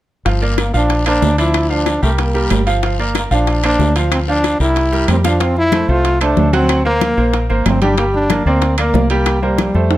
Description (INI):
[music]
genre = latin, salsa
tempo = 186 BPM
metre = 4/4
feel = straight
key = F major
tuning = A4 = 441 Hz
[part]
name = bright concert grand piano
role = accompaniment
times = 0.3-10.0 s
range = F3 to G5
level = -19 LUFS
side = right 2 dB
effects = none
[part]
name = deep dub fingered electric bass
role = bass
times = 0.3-10.0 s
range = G1 to F2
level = -17 LUFS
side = equal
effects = none
[part]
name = bongos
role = percussion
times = 0.3-10.0 s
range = none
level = -24 LUFS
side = left 11 dB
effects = none
[part]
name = guiro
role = percussion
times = 0.3-5.4 s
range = none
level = -29 LUFS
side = left 6 dB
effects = none
[part]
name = timbales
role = percussion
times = 0.3-10.0 s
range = none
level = -23 LUFS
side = right 7 dB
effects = none
[part]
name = bright trombone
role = melody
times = 0.6-10.0 s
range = G3 to F4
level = -17 LUFS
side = equal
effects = none
[part]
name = claves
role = percussion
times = 0.6-9.7 s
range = none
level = -29 LUFS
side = left 9 dB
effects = none
[part]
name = congas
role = percussion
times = 5.4-10.0 s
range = none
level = -23 LUFS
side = left 2 dB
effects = none
[sound]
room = light reverb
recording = close, detailed microphones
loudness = -12 LUFS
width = side -14 dB against mid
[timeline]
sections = 0.3-5.4 A section; 5.4-10.0 B section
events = drum fill 4.9-5.4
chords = 0.3 Gm7; 0.9 Bbadd9; 1.5 Dm7; 2.2 C5; 2.8 Gm7; 3.5 Bbadd9; 4.1 Dm7; 4.8 C7; 5.4 Fmaj7; 6.7 Daug7; 8.0 Gm; 9.3 C5